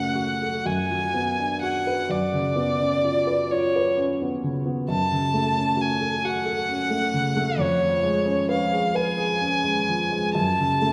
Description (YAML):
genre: classical, romantic duo for violin and grand piano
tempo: 44 BPM (dotted quarters)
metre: 6/8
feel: uneven beats, rubato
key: F# minor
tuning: A4 = 440 Hz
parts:
  - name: rich violin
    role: melody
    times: 0.0-10.9 s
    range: C#5 to A5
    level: -26 LUFS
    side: equal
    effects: none
  - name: warm baby grand piano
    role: accompaniment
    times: 0.0-10.9 s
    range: E#2 to B4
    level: -27 LUFS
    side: equal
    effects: none
room: wet scoring stage reverb, RT60 2.2 s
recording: heard from further back in the room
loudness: -24 LUFS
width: mono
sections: 0.0-10.9 A section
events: none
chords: 0.0 F#m; 0.7 Bm/F#; 2.1 C#7b9/F#; 4.9 F#m; 7.6 C#7/E#; 10.3 F#m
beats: 0.68 | 2.11 3.52 | 4.91 6.27 | 7.61 8.96 | 10.35